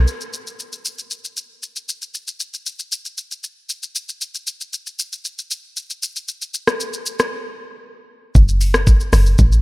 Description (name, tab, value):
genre	amapiano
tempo	116 BPM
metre	4/4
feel	straight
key	F# minor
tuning	A4 = 440 Hz
part	deep log drum bass	bass	0.0-0.1, 8.4-9.6 s	F#1 to A1	-14 LUFS	equal	none
part	smooth R&B drum kit	drums	0.1-9.6 s	hi-hat, kick drum, rim click, shaker	-18 LUFS	equal	none
room	digital ambience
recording	none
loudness	-18 LUFS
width	side -22 dB against mid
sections	0.1-8.4 A section; 8.4-9.6 B section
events	break 7.3-8.4; drop 8.4-9.6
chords	none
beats	| 0.08 0.59 1.11 1.63 | 2.15 2.66 3.18 3.70 | 4.21 4.73 5.25 5.76 | 6.28 6.80 7.32 7.83 | 8.35 8.87 9.39